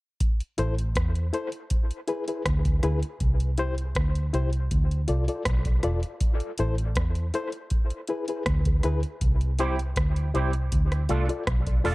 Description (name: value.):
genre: dub reggae.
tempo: 80 BPM.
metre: 4/4.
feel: straight.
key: A minor.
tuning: A4 = 440 Hz.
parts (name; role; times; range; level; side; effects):
booming analog drum machine; drums; 0.2-11.9 s; hi-hat, kick drum, rim click; -26 LUFS; equal; none.
reed electric piano; stabs; 0.6-11.9 s; E4 to D5; -32 LUFS; left 3 dB; tremolo, dub echo.
vintage muted fingered electric bass; bass; 0.6-11.9 s; E1 to E2; -25 LUFS; equal; none.
electric guitar with an envelope filter; accompaniment; 9.6-11.9 s; G3 to A4; -32 LUFS; right 6 dB; ensemble chorus, dub echo.
room: digital ambience.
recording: echo-heavy mix.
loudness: -24 LUFS.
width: side -20 dB against mid.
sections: 0.2-11.9 A section.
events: none.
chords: 0.2 Am; 1.7 E; 3.2 C; 4.7 Dm; 6.2 Am; 7.7 E; 9.2 C; 10.7 Dm.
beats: | 0.20 0.95 1.71 2.46 | 3.21 3.96 4.71 5.46 | 6.21 6.96 7.71 8.46 | 9.21 9.96 10.71 11.46.